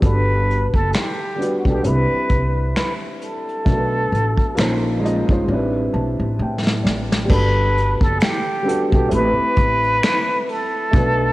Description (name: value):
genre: lo-fi hip hop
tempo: 66 BPM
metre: 4/4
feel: swing 56% on 16ths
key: A dorian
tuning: A4 = 440 Hz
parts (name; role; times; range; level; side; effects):
- trumpet with plunger mute; melody; 0.0-11.3 s; F#4 to B4; -21 LUFS; equal; low-pass filter, cassette tape
- dark upright piano; accompaniment; 0.0-11.3 s; G3 to A5; -23 LUFS; equal; cassette tape, low-pass filter
- upright bass; bass; 0.0-11.3 s; F#1 to A2; -21 LUFS; equal; none
- vintage brush drum kit; drums; 0.0-11.2 s; crash cymbal, finger snaps, hi-hat, kick drum, snare drum; -20 LUFS; equal; cassette tape
room: light reverb, studio ambience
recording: home recording on cassette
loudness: -16 LUFS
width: side -18 dB against mid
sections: 0.0-7.3 A section; 7.3-11.3 B section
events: drum fill 5.5-7.3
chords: 0.0 Gmaj7; 1.8 Cmaj7; 3.7 Bm7; 4.6 Bbm11; 5.5 Am11; 7.3 Gmaj7; 9.1 Am7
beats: | 0.03 0.93 1.84 2.75 | 3.66 4.57 5.48 6.39 | 7.30 8.21 9.12 10.03 | 10.93